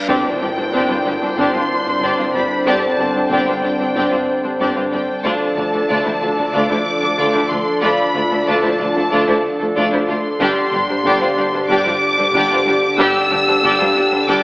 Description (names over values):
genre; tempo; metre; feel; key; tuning
cinematic, hybrid orchestral and electronic film score; 93 BPM; 4/4; straight; unclear; A4 = 436 Hz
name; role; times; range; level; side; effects
warm symphonic violin section; melody; 0.0-14.4 s; G5 to E6; -20 LUFS; equal; none
hollow soft pad; sustained chords; 0.0-14.4 s; D3 to D5; -21 LUFS; equal; chorus
reverse cymbal and impact; sound effects; 0.0-2.7 s; none; -27 LUFS; equal; none
rich symphonic violin section; second line; 0.1-14.4 s; D4 to D5; -21 LUFS; equal; none
rich studio viola section; accompaniment; 0.1-14.4 s; G3 to D4; -21 LUFS; equal; none
mellow French horn section; sustained chords; 0.1-14.4 s; D3 to G4; -23 LUFS; left 1 dB; none
rich symphonic cello section; bass; 0.1-14.3 s; D2 to G2; -28 LUFS; equal; none
warm symphonic double bass section; bass; 0.1-14.3 s; G1 to D2; -30 LUFS; equal; none
room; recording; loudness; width
wet scoring stage reverb, RT60 1.7 s; AM radio sound; -14 LUFS; side -24 dB against mid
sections
0.1-14.4 A section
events
impact 0.1-2.7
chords
0.1 Gsus4; 5.2 Dm; 10.4 Gsus4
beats
| 0.09 0.73 1.38 2.02 | 2.67 3.31 3.96 4.60 | 5.25 5.89 6.54 7.18 | 7.83 8.47 9.12 9.76 | 10.41 11.05 11.70 12.34 | 12.99 13.63 14.28